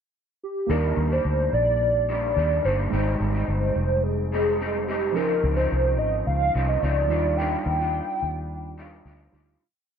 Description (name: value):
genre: indie pop, bedroom pop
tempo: 108 BPM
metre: 4/4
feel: straight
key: Eb major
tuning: A4 = 438 Hz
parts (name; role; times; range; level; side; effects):
- warbly nostalgic lead; melody; 0.4-9.0 s; G4 to G5; -25 LUFS; equal; analog chorus, tape echo
- electric guitar through a small old amp; accompaniment; 0.7-9.6 s; Ab2 to F4; -31 LUFS; left 1 dB; analog chorus, vibrato effect
- tine electric piano; accompaniment; 0.7-9.6 s; F3 to G5; -32 LUFS; right 7 dB; medium stereo tremolo, cassette tape
- vintage muted fingered electric bass; bass; 0.7-9.6 s; F1 to Eb2; -25 LUFS; equal; none
room: light reverb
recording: none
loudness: -21 LUFS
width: side -8 dB against mid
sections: 0.0-0.7 pickup bar; 0.7-9.6 A section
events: fade-out 7.4-9.6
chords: 0.0 N.C.; 0.7 Ebmaj7; 2.9 Abmaj7; 5.2 Dbmaj9; 7.1 Ebmaj9